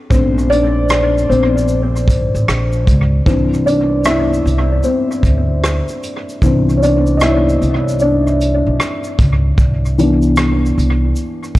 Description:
lo-fi hip hop; 76 BPM; 4/4; swing 65% on 16ths; C major; A4 = 436 Hz
felt-muted upright piano; accompaniment; 0.0-11.6 s; E3 to E5; -15 LUFS; left 1 dB; analog delay
upright bass; bass; 0.1-11.6 s; A1 to D2; -16 LUFS; equal
vintage brush drum kit; drums; 0.1-11.6 s; hi-hat, kick drum, rim click, shaker; -17 LUFS; equal; analog delay
light reverb, small room ambience; echo-heavy mix, cassette tape; -12 LUFS; side -17 dB against mid
0.0-11.6 A section
felt piano solo 0.0-11.6
0.0 Bbmaj9; 3.3 Cmaj9
| 0.11 0.90 1.69 2.48 | 3.26 4.05 4.84 5.63 | 6.42 7.21 8.00 8.79 | 9.58 10.37 11.16

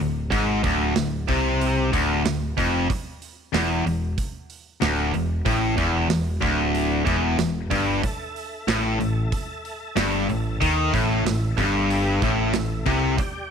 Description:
classic rock; 93 BPM; 4/4; straight; A4 = 440 Hz
distorted electric guitar; riff; 0.0-13.2 s; D2 to Eb3; -25 LUFS; left 11 dB; overdrive
tight distorted guitar; riff; 0.0-13.2 s; D2 to Eb3; -26 LUFS; right 10 dB; distortion
overdriven picked electric bass; bass; 0.0-13.2 s; D1 to Eb2; -26 LUFS; equal
big rock drum kit; drums; 0.0-13.3 s; hi-hat, kick drum, snare drum; -28 LUFS; right 3 dB
tonewheel organ; sustained chords; 8.0-13.5 s; G4 to A5; -35 LUFS; equal; slow rotary speaker, overdrive, chorus vibrato
studio reverb; 1960s-style stereo with parts hard left and right; -20 LUFS; side -7 dB against mid
0.0-13.5 A section
0.0 Dm7b5; 2.9 Dsus24; 8.0 A5
| 0.32 0.96 1.61 2.25 | 2.89 3.54 4.18 4.82 | 5.46 6.11 6.75 7.39 | 8.04 8.68 9.32 9.97 | 10.61 11.25 11.90 12.54 | 13.19

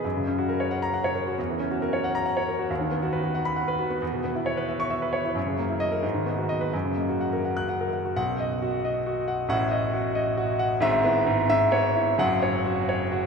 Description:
classical, virtuoso piano study; 82-94 BPM (dotted quarters); 6/8; rubato; B major; A4 = 440 Hz
clear grand piano; solo; 0.0-13.3 s; F#1 to F#6; -23 LUFS; equal
wet cathedral reverb, RT60 6.7 s; recorded in a church or concert hall; -23 LUFS; side -5 dB against mid
0.0-8.2 A section; 8.2-13.3 B section
0.0 F#; 1.4 F#7/E; 2.7 B/D#; 4.0 C#m7/E; 5.4 F#6; 6.0 G#m7; 6.7 F#; 8.2 B; 9.5 D#dim/A; 10.8 E/G#; 11.5 C#m7/G#; 12.2 F#5
| 0.04 0.71 | 1.38 2.04 | 2.70 3.35 | 4.02 4.69 | 5.36 6.03 | 6.74 7.45 | 8.17 8.85 | 9.50 10.16 | 10.82 11.49 | 12.19 12.89

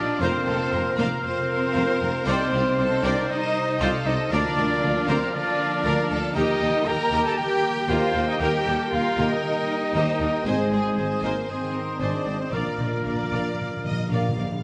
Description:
cinematic; 117 BPM; 4/4; straight; Bb major; A4 = 440 Hz
rich studio violin section; melody; 0.0-14.6 s; F4 to F5; -36 LUFS; equal
dark clarinet; second line; 0.0-14.3 s; Bb4 to D5; -38 LUFS; equal
rich symphonic violin section; second line; 0.0-14.5 s; C5 to Bb5; -39 LUFS; equal
silver concert flute; second line; 0.0-14.1 s; Ab4 to Bb5; -36 LUFS; equal
warm cor anglais; second line; 0.0-14.4 s; Eb5 to G5; -35 LUFS; equal
rich studio viola section; accompaniment; 0.0-14.5 s; G4 to D5; -34 LUFS; equal
dark French horn section; sustained chords; 0.0-14.4 s; G3 to Ab4; -35 LUFS; equal
concert harp; arpeggios; 0.0-14.6 s; F2 to G5; -36 LUFS; equal
clear trumpet; stabs; 0.0-14.1 s; Ab4 to Bb5; -31 LUFS; equal
dark tuba; bass; 0.0-14.5 s; F1 to Eb2; -34 LUFS; equal
rich symphonic cello section; bass; 0.0-14.1 s; Ab3 to Bb4; -31 LUFS; equal
warm symphonic double bass section; bass; 0.0-14.5 s; Ab1 to F2; -34 LUFS; equal
timpani; percussion; 12.5-14.6 s; Bb2; -32 LUFS; equal
wet scoring stage reverb, RT60 1.8 s; nothing above 10.7 kHz; -24 LUFS; mono
0.0-14.6 A section
timpani fill 12.5-14.6
0.2 Fsus4; 2.3 Cmadd9; 4.3 Bb/D; 6.4 Eb; 10.5 Ab; 12.5 Bb
| 0.21 0.72 1.24 1.75 | 2.26 2.78 3.29 3.80 | 4.31 4.83 5.34 5.85 | 6.36 6.87 7.38 7.90 | 8.41 8.92 9.44 9.95 | 10.46 10.98 11.49 12.01 | 12.53 13.06 13.59 14.11

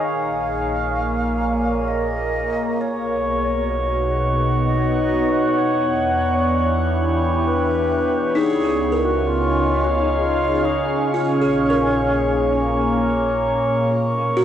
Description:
ambient; 65 BPM; 3/4; straight; A4 = 440 Hz
bright alto flute; melody; 0.0-13.0 s; C#4 to E#5; -25 LUFS; equal; cassette tape, shimmer reverb, tape echo
evolving wavetable pad; sustained chords; 0.0-14.4 s; A#2 to F#5; -20 LUFS; equal; phaser, built-in reverb, cassette tape, shimmer reverb
round analog bass; bass; 0.1-13.9 s; A#1 to E2; -26 LUFS; equal; tube saturation
glass harmonica; texture; 2.8-14.4 s; C#5 to C#6; -24 LUFS; equal; cassette tape, shimmer reverb
buzzing kalimba; arpeggios; 8.4-14.4 s; D#4 to A#4; -26 LUFS; left 1 dB; cassette tape, shimmer reverb, tape echo
wet small room reverb, RT60 0.5 s; home recording on cassette; -17 LUFS; side -10 dB against mid
0.0-13.9 A section
fade-in on kalimba 0.0-13.9; fade-in on alto flute 0.0-13.9
0.0 A#m7; 2.8 B; 5.6 Em7; 8.4 C#add9; 11.1 A#m7; 13.9 B
| 0.05 0.97 1.90 | 2.82 3.74 4.67 | 5.59 6.51 7.43 | 8.36 9.28 10.20 | 11.13 12.05 12.97 | 13.90

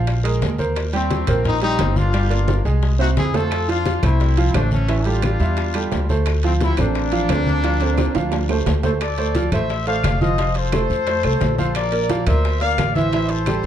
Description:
latin, salsa; 175 BPM; 4/4; straight; D minor; A4 = 439 Hz
bright grand piano; accompaniment; 0.0-13.7 s; E3 to G#5; -23 LUFS; right 5 dB
upright bass; bass; 0.0-13.7 s; F1 to F2; -20 LUFS; equal
bongos; percussion; 0.1-13.6 s; -32 LUFS; left 8 dB
congas; percussion; 0.1-13.6 s; -25 LUFS; left 1 dB
guiro; percussion; 0.1-13.7 s; -38 LUFS; left 7 dB
timbales; percussion; 0.1-13.6 s; -30 LUFS; right 8 dB
mellow trumpet section; melody; 0.9-13.7 s; A3 to F5; -23 LUFS; left 4 dB
claves; percussion; 3.5-13.6 s; -38 LUFS; right 2 dB
light reverb; dark, warm production; -17 LUFS; side -10 dB against mid
0.0-9.0 A section; 9.0-13.7 B section
drum fill 2.5-3.5, 8.0-9.0
0.1 Bbsus2; 0.8 Eb6; 2.1 Gm7; 2.8 Caug; 3.5 Fmaj7; 4.9 A5; 6.3 Dm7; 9.0 Dm9; 10.4 F; 11.8 Bbadd9; 13.1 Am7
0.07 0.41 | 0.76 1.10 1.45 1.79 | 2.14 2.48 2.82 3.17 | 3.51 3.86 4.20 4.54 | 4.89 5.23 5.58 5.92 | 6.26 6.61 6.95 7.29 | 7.64 7.98 8.32 8.67 | 9.01 9.35 9.70 10.04 | 10.38 10.73 11.07 11.41 | 11.76 12.10 12.44 12.78 | 13.13 13.47

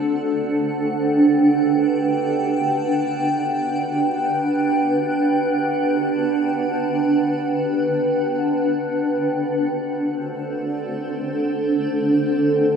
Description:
ambient; free time; A4 = 438 Hz
granular cloud pad; solo; 0.0-12.8 s; D4 to G5; -18 LUFS; right 1 dB; built-in reverb, lush chorus, ping-pong delay
wet lush hall reverb, RT60 2.6 s; dreamy mix soaked in reverb; -18 LUFS; side -6 dB against mid
0.0-12.8 A section
0.1 Gmaj7/D; 9.1 D7
free time

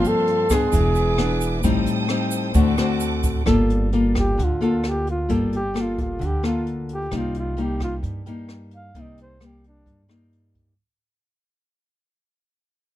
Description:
bossa nova; 131 BPM; 4/4; straight; G minor; A4 = 443 Hz
breathy flugelhorn; melody; 0.0-10.1 s; D4 to F5; -25 LUFS; right 1 dB
nylon-string guitar; accompaniment; 0.0-10.7 s; G2 to A4; -23 LUFS; left 2 dB
warm symphonic string section; sustained chords; 0.0-3.5 s; Bb3 to Eb6; -30 LUFS; right 3 dB
upright bass; bass; 0.0-10.7 s; E1 to G2; -25 LUFS; right 1 dB
jazz brush drum kit; drums; 0.0-10.7 s; hi-hat, kick drum, rim click; -26 LUFS; equal
egg shaker; percussion; 0.0-3.5 s; -36 LUFS; right 8 dB
little or no reverb; close, detailed microphones; -19 LUFS; side -13 dB against mid
0.0-3.5 A section; 3.5-10.8 B section
fade-out 3.5-10.8; flugelhorn solo 3.5-10.8
0.0 Gm11; 0.7 E7; 1.6 Am7b5; 2.6 D7; 3.5 Gm9; 7.1 Cm7
0.27 0.72 1.18 | 1.64 2.09 2.55 3.01 | 3.47 3.92 4.38 4.84 | 5.29 5.75 6.21 6.66 | 7.12 7.58 8.03 8.49 | 8.95 9.40 9.86 10.31

